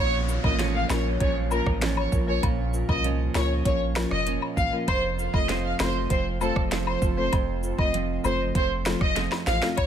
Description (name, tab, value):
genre	dancehall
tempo	98 BPM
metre	4/4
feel	straight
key	Bb harmonic minor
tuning	A4 = 440 Hz
part	rich studio violin section	melody	0.0-9.9 s	A4 to F5	-28 LUFS	equal	dub echo
part	nylon-string guitar	arpeggios	0.0-9.9 s	F2 to Db4	-32 LUFS	right 9 dB	none
part	punchy sub bass	bass	0.0-9.9 s	F1 to Db2	-28 LUFS	right 1 dB	none
part	downlifter	sound effects	0.0-4.9 s	none	-37 LUFS	right 3 dB	none
part	folk marimba with medium mallets	accompaniment	0.3-9.7 s	F3 to C5	-32 LUFS	left 6 dB	dub echo
part	cabasa and woodblock	percussion	0.3-9.9 s	none	-35 LUFS	left 8 dB	none
part	afro-pop drum kit	drums	0.4-9.9 s	hi-hat, kick drum, rim click, snare drum	-27 LUFS	right 1 dB	none
room	light reverb, small room reverb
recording	echo-heavy mix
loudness	-22 LUFS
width	side -9 dB against mid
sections	0.0-9.9 A section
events	drum fill 9.2-9.8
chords	0.0 Bbm; 4.9 F